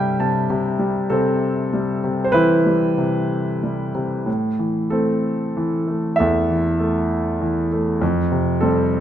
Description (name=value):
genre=classical, lyrical solo piano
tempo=96 BPM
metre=3/4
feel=uneven beats, rubato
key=A minor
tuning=A4 = 440 Hz
part: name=clear concert grand piano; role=solo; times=0.0-9.0 s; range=E2 to A5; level=-18 LUFS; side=equal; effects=none
room=moderate recital hall reverb, RT60 1.5 s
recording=minimal, uncompressed stereo recording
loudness=-18 LUFS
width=side -10 dB against mid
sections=0.0-9.0 A section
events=grand piano fill 0.0-0.5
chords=0.0 Cmaj7; 4.3 Am; 8.0 Fsus2